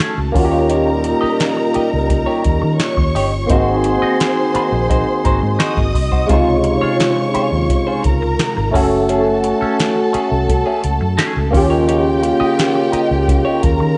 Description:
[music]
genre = lush 1970s-style soul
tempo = 86 BPM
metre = 4/4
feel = straight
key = unclear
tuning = A4 = 440 Hz
[part]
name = warm studio string section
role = second line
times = 0.0-14.0 s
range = G4 to Eb6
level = -25 LUFS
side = equal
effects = none
[part]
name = barky tine electric piano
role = accompaniment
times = 0.0-14.0 s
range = C3 to A4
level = -20 LUFS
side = equal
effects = overdrive, ensemble chorus
[part]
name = clean electric guitar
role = riff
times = 0.0-13.8 s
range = A3 to Eb5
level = -26 LUFS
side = equal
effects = wah
[part]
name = soft vintage rhythm box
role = drums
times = 0.0-13.8 s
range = hi-hat, kick drum, snare drum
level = -21 LUFS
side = equal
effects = none
[part]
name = vintage muted fingered electric bass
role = bass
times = 0.2-14.0 s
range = Gb1 to Eb3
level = -22 LUFS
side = equal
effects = none
[part]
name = clear trombone section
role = stabs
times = 0.4-14.0 s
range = Bb2 to Ab4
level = -24 LUFS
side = equal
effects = none
[sound]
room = light reverb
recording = nothing above 10.5 kHz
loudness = -16 LUFS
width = mono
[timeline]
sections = 0.0-14.0 A section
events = none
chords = 0.4 Eb7; 3.5 Ab7; 6.3 Dbmaj7; 8.7 Gbmadd9; 11.5 Eb7

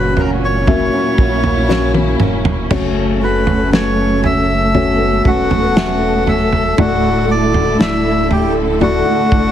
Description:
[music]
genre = pop ballad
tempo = 59 BPM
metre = 4/4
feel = straight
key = unclear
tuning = A4 = 440 Hz
[part]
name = melodica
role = melody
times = 0.0-9.5 s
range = F#4 to E6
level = -18 LUFS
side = equal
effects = none
[part]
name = felt-muted upright piano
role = accompaniment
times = 0.0-9.5 s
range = A2 to E5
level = -18 LUFS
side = left 5 dB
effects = none
[part]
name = warm symphonic string section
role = sustained chords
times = 0.0-9.5 s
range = A#2 to A4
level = -20 LUFS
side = left 1 dB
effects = none
[part]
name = nylon-string guitar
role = arpeggios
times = 0.0-9.5 s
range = F#2 to F#4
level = -21 LUFS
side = right 7 dB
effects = none
[part]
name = sub bass with octave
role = bass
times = 0.0-9.5 s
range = D1 to A#1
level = -21 LUFS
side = equal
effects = none
[part]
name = loose indie drum kit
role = drums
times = 0.2-9.5 s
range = crash cymbal, kick drum, snare drum, toms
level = -18 LUFS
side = right 1 dB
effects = none
[sound]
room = light reverb, small room ambience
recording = heavily compressed radio sound, multiband compression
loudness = -12 LUFS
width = side -10 dB against mid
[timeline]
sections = 0.0-9.5 A section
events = drum fill 1.7-2.7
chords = 0.0 F#; 2.7 F#m; 6.8 Dadd9

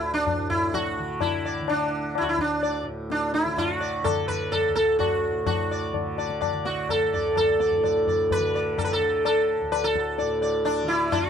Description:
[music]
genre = indian classical, Hindustani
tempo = 127 BPM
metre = 4/4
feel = straight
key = D raga bhupali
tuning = A4 = 440 Hz
[part]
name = sitar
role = melody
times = 0.0-11.3 s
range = D4 to D5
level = -23 LUFS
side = right 1 dB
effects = none
[part]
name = tanpura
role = drone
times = 0.0-11.3 s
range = D2 to D3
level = -33 LUFS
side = right 2 dB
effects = none
[part]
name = tabla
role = percussion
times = 0.3-11.3 s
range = none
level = -30 LUFS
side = left 8 dB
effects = none
[sound]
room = light reverb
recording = dry, close 1970s-style studio recording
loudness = -22 LUFS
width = side -8 dB against mid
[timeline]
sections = 0.0-11.3 A section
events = none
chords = none

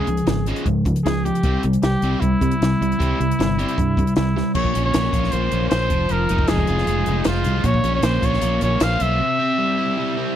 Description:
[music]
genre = indie rock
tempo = 155 BPM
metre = 4/4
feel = straight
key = unclear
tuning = A4 = 440 Hz
[part]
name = clear trumpet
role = melody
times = 0.0-10.4 s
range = E4 to F5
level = -23 LUFS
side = equal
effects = slapback echo
[part]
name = crunchy overdriven guitar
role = riff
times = 0.0-10.4 s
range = Bb2 to C5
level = -22 LUFS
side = equal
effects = none
[part]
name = fingered electric bass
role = bass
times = 0.1-9.2 s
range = F1 to C3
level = -22 LUFS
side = equal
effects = none
[part]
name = compact cocktail drum kit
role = drums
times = 0.1-9.1 s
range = crash cymbal, hi-hat, kick drum, snare drum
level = -23 LUFS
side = equal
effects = none
[sound]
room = little or no reverb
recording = dry, close 1970s-style studio recording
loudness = -17 LUFS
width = side -10 dB against mid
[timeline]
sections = 0.0-4.6 A section; 4.6-10.4 B section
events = drum fill 4.4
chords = 0.0 Db; 1.4 C; 4.6 Bbmadd9; 5.9 Fm7; 7.7 Bbmadd9; 9.2 C

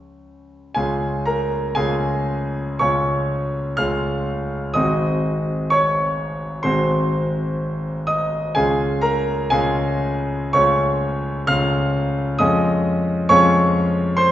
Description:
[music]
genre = classical, romantic nocturne for solo piano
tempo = 62 BPM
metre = 4/4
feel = uneven beats, rubato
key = Db major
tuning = A4 = 442 Hz
[part]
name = bright concert grand piano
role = solo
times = 0.0-14.3 s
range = Ab1 to F6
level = -17 LUFS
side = equal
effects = none
[sound]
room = wet recital hall reverb, RT60 1.6 s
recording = heard from further back in the room, nothing above 7.7 kHz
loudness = -18 LUFS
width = side -12 dB against mid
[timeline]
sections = 0.8-14.3 A section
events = none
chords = 0.0 Db; 4.8 Ab7; 8.6 Db; 12.4 Db/F

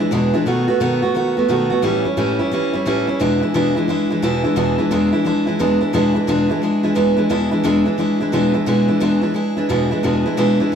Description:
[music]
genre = rock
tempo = 176 BPM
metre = 4/4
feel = swing 64% on 8ths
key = E mixolydian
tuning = A4 = 440 Hz
[part]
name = picked steel-string acoustic guitar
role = solo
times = 0.0-10.8 s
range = E2 to F#4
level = -15 LUFS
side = equal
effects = none
[sound]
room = moderate stone room reverb, RT60 1.2 s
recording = band playing live in one room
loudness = -15 LUFS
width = side -7 dB against mid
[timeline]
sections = 0.0-5.9 A section; 5.9-10.8 B section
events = none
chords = 0.5 B7; 1.8 A7; 3.2 E7

